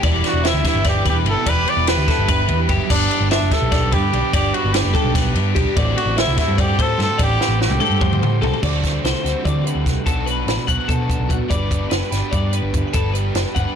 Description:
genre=math rock and midwest emo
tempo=293 BPM (eighths)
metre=7/8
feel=straight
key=G major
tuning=A4 = 439 Hz
part: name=twelve-string electric guitar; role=accompaniment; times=0.0-13.8 s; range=G2 to D5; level=-27 LUFS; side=right 9 dB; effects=ensemble chorus, plate reverb
part: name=twelve-string electric guitar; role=arpeggios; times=0.0-13.8 s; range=F#4 to F#5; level=-25 LUFS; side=left 7 dB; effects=analog chorus, plate reverb
part: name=overdriven electric guitar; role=riff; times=0.0-13.8 s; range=A2 to B4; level=-26 LUFS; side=right 1 dB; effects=none
part: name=hollow-body short-scale picked electric bass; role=bass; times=0.0-13.6 s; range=E1 to D3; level=-21 LUFS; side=equal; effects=none
part: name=compact cocktail drum kit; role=drums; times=0.0-13.7 s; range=crash cymbal, hi-hat, kick drum, ride cymbal, snare drum, toms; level=-21 LUFS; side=equal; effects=soft clipping on snare
part: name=clear trumpet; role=melody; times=0.3-8.4 s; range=D4 to D5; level=-22 LUFS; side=right 2 dB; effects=plate reverb
room=light reverb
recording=blown-out, overdriven recording, overdrive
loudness=-16 LUFS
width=side -8 dB against mid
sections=0.0-8.6 A section; 8.6-13.8 B section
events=drum fill 7.4-8.6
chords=0.0 Em7; 2.9 G; 5.8 D7sus4/A; 8.6 D9sus4; 10.1 Bm7; 11.5 Gmaj7

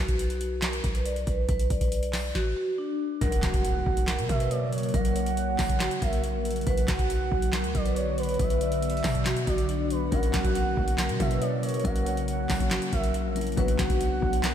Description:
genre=hip hop, trap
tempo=139 BPM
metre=4/4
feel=half-time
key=B harmonic minor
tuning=A4 = 443 Hz
part: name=vibraphone with soft mallets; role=melody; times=0.0-14.5 s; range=D4 to D5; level=-31 LUFS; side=left 1 dB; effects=diffuse ambient delay
part: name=hard-hitting 808-style bass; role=bass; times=0.0-14.5 s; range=A#1 to B2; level=-30 LUFS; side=equal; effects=none
part: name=booming analog drum machine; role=drums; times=0.1-14.5 s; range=handclaps, hi-hat, kick drum, snare drum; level=-29 LUFS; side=equal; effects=none
part: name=gliding portamento lead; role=second line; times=3.2-14.5 s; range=B4 to F#5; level=-33 LUFS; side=right 5 dB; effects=chorus, diffuse ambient delay
part: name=ethereal airy pad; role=sustained chords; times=4.2-14.5 s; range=C#3 to F#4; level=-33 LUFS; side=equal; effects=ensemble chorus, built-in reverb
part: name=impact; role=sound effects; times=3.2-4.9 s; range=none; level=-37 LUFS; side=equal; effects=none
part: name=dark concert grand piano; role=accompaniment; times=10.1-14.5 s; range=F#3 to F#4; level=-32 LUFS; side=left 7 dB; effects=none
room=moderate lush hall reverb, RT60 2.2 s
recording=dreamy mix soaked in reverb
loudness=-24 LUFS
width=side -9 dB against mid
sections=0.0-3.2 A section; 3.2-14.5 B section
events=stop 2.4-3.2; impact 3.2-4.9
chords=0.0 Bm; 3.2 F#/B; 6.7 Bm; 10.1 F#/B; 13.6 Bm

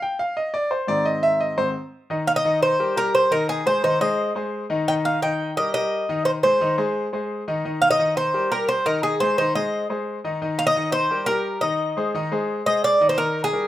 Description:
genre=latin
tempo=173 BPM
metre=4/4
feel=straight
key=Eb major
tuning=A4 = 441 Hz
part: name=bright concert grand piano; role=accompaniment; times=0.0-13.7 s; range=Ab2 to G5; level=-24 LUFS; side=left 1 dB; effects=none
part: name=Cuban tres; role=melody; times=2.3-13.7 s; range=Ab4 to G5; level=-20 LUFS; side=equal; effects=none
room=moderate studio reverb, RT60 0.6 s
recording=rough home demo mix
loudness=-19 LUFS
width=side -13 dB against mid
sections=0.0-2.1 A section; 2.1-13.2 B section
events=grand piano solo 0.0-2.1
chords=0.0 Eb; 0.7 Ab; 2.1 Eb; 3.5 Ab; 4.9 Eb; 6.3 Ab; 7.6 Eb; 9.0 Ab; 10.4 Eb; 11.8 Ab; 13.2 Eb

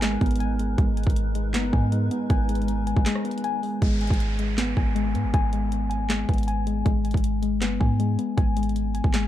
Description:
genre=hip hop, trap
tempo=158 BPM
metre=4/4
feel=half-time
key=G# minor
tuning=A4 = 440 Hz
part: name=granular cloud pad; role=sustained chords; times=0.0-3.8 s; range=G#3 to B4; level=-35 LUFS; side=equal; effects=built-in reverb
part: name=muted felt-like synth keys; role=arpeggios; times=0.0-9.3 s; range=G#3 to G#5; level=-27 LUFS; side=left 3 dB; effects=chorus, low-pass filter, tape echo
part: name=clean 808-style bass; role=bass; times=0.0-9.3 s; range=G1 to G#2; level=-26 LUFS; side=right 1 dB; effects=none
part: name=trap drum kit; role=drums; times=0.0-9.2 s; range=handclaps, hi-hat, kick drum, rim click, snare drum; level=-24 LUFS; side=right 1 dB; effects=none
part: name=downlifter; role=sound effects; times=3.8-6.9 s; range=none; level=-38 LUFS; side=right 2 dB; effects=none
room=digital ambience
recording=dark, warm production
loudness=-22 LUFS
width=side -12 dB against mid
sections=0.0-3.8 A section; 3.8-9.3 B section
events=break 3.1-3.8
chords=0.0 G#madd9; 3.8 G#m

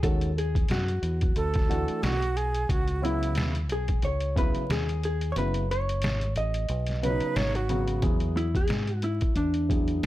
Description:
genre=hip hop, jazz-hop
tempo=90 BPM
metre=4/4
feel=swing 57% on 16ths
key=E major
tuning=A4 = 440 Hz
part: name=vintage hollow-body jazz guitar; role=melody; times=0.0-10.1 s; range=D4 to D#5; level=-31 LUFS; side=left 1 dB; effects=none
part: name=dark concert grand piano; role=accompaniment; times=0.0-10.1 s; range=C#3 to G#4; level=-31 LUFS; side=left 1 dB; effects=none
part: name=deep dub fingered electric bass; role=bass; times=0.0-10.1 s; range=F#1 to G#2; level=-29 LUFS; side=equal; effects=none
part: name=trip hop sampler-style drum kit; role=drums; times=0.0-10.1 s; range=hi-hat, kick drum, snare drum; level=-28 LUFS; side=equal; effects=none
part: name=breathy bright concert flute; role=second line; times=1.4-8.0 s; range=E4 to C#5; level=-30 LUFS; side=right 4 dB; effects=none
room=little or no reverb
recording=dry, gritty hardware recording, vinyl crackle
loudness=-24 LUFS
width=side -15 dB against mid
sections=0.0-8.0 A section; 8.0-10.1 B section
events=kick muted 5.4-8.0; hollow-body jazz guitar solo 8.0-10.1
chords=0.0 F#m13/D#; 1.4 Dadd9; 2.7 C#m11; 5.4 F#m7; 6.7 Badd9; 8.0 E

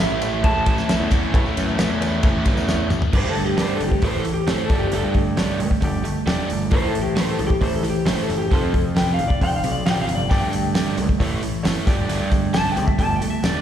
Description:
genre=classic rock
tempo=134 BPM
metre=4/4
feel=straight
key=A mixolydian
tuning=A4 = 440 Hz
part: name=clean lap steel guitar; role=melody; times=0.0-13.6 s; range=G4 to A5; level=-25 LUFS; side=left 2 dB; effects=slapback echo, digital delay
part: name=bright upright piano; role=accompaniment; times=0.0-13.6 s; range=E4 to A5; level=-32 LUFS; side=equal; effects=slapback echo
part: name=cranked stack guitar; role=riff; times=0.0-2.9 s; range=A2 to A3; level=-30 LUFS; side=left 2 dB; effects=overdrive, phaser, slapback echo
part: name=overdriven electric guitar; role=riff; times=0.0-13.6 s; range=F2 to E4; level=-26 LUFS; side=right 9 dB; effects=slapback echo
part: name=sludgy distorted guitar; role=riff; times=0.0-13.6 s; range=F2 to E4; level=-28 LUFS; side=left 8 dB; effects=overdrive, slapback echo
part: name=overdriven picked electric bass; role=bass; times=0.0-13.5 s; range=E1 to A2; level=-25 LUFS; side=equal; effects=none
part: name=tambourine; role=percussion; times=0.1-3.1, 10.3-13.5 s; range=none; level=-42 LUFS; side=left 2 dB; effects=none
part: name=damped 70s drum kit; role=drums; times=0.2-13.5 s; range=crash cymbal, hi-hat, kick drum, ride cymbal, snare drum, toms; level=-22 LUFS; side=equal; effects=none
room=light reverb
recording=live gig heard through the venue's PA, recital hall reverb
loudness=-18 LUFS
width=side -10 dB against mid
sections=0.0-3.1 A section; 3.1-13.6 B section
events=drum fill 2.7-3.1; electric slide guitar solo 3.1-13.6; upright piano fill 5.8-6.7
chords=0.0 Aadd9; 3.1 Gsus2; 4.0 A; 4.7 Gsus2; 6.7 A; 8.5 F; 10.3 Gsus2; 11.2 A; 11.9 Gsus2

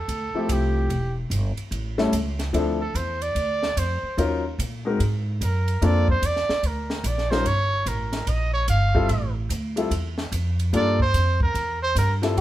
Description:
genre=jazz, small-group swing and bop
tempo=146 BPM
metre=4/4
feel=swing 65% on 8ths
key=F major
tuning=A4 = 441 Hz
part: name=warm trumpet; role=second line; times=0.0-12.4 s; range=G4 to F5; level=-26 LUFS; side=right 2 dB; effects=none
part: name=upright bass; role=bass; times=0.0-12.4 s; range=E1 to Bb2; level=-24 LUFS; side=equal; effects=none
part: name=compact cocktail drum kit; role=drums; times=0.1-12.4 s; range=hi-hat, kick drum, ride cymbal, snare drum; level=-30 LUFS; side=equal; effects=none
part: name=warm concert grand piano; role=accompaniment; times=0.3-12.4 s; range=F3 to Bb4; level=-24 LUFS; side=left 3 dB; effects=none
room=light reverb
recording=band playing live in one room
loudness=-21 LUFS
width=side -14 dB against mid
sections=0.0-12.4 A section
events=trumpet solo 0.0-12.4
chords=0.0 Fmaj9; 0.9 Em; 1.7 A7; 2.5 Dm7; 4.2 Ebm7; 5.0 Absus2; 5.8 Bbmaj7; 7.5 Gm9b5; 9.1 Fmaj7; 10.7 Gm7; 11.6 C

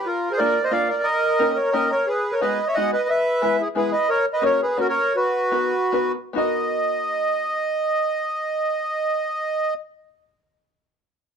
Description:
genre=musette waltz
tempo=130-179 BPM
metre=3/4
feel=straight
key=B major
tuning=A4 = 439 Hz
part: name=accordion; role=melody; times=0.0-9.7 s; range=E4 to F#5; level=-20 LUFS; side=right 1 dB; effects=none
part: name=open-back banjo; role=accompaniment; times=0.4-9.7 s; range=G#3 to C#5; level=-26 LUFS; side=left 3 dB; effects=none
room=moderate small room reverb, RT60 0.5 s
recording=dark, warm production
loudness=-19 LUFS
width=side -7 dB against mid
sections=0.0-6.4 A section; 6.4-9.1 B section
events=slowing down 4.1-6.4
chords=0.1 A#7; 1.1 D#7; 2.1 G#m7; 3.1 E; 4.1 F#; 5.1 Bmaj7

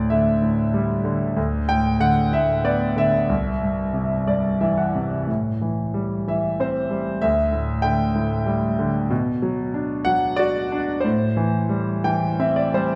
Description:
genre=classical, lyrical solo piano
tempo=93 BPM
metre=3/4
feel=uneven beats, rubato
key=unclear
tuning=A4 = 440 Hz
part: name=clear grand piano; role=solo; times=0.0-13.0 s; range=C2 to G5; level=-22 LUFS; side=equal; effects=none
room=wet recital hall reverb, RT60 1.3 s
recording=recorded in a church or concert hall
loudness=-22 LUFS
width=mono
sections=0.0-13.0 A section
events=grand piano fill 4.0-5.3, 11.7-13.0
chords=0.0 Dsus24; 1.4 D69; 3.3 C; 5.3 Am7; 7.2 Dsus24; 9.1 Bm; 11.1 Am7

